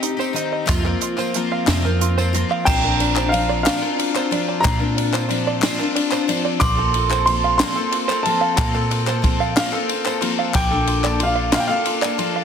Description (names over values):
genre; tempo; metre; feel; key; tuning
indie folk with a building arrangement; 61 BPM (dotted quarters); 6/8; straight; Bb major; A4 = 440 Hz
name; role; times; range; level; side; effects
picked twelve-string acoustic guitar; accompaniment; 0.0-12.4 s; F2 to A4; -23 LUFS; left 6 dB; none
open-back banjo; arpeggios; 0.0-12.4 s; D4 to F5; -26 LUFS; right 8 dB; analog delay
compact cocktail drum kit; drums; 0.0-12.3 s; crash cymbal, hi-hat, kick drum, ride cymbal, snare drum; -23 LUFS; equal; none
tambourine; percussion; 0.0-12.2 s; none; -39 LUFS; right 14 dB; none
hollow-body short-scale fingered electric bass; bass; 0.7-11.5 s; Bb1 to Bb2; -22 LUFS; equal; none
group handclap; percussion; 0.7-12.2 s; none; -29 LUFS; left 8 dB; none
warm upright piano; melody; 2.7-12.4 s; F5 to D6; -23 LUFS; left 1 dB; none
glockenspiel with brass mallets; second line; 2.7-12.4 s; Bb5 to D6; -28 LUFS; right 7 dB; none
room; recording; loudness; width
light reverb, small room ambience; dense, heavily limited modern master; -17 LUFS; side -7 dB against mid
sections
0.0-2.7 A section; 2.7-12.4 B section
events
none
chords
0.0 Cm; 0.7 Fsus4; 2.7 Bbadd9; 6.6 F/Bb; 10.6 Dm/Bb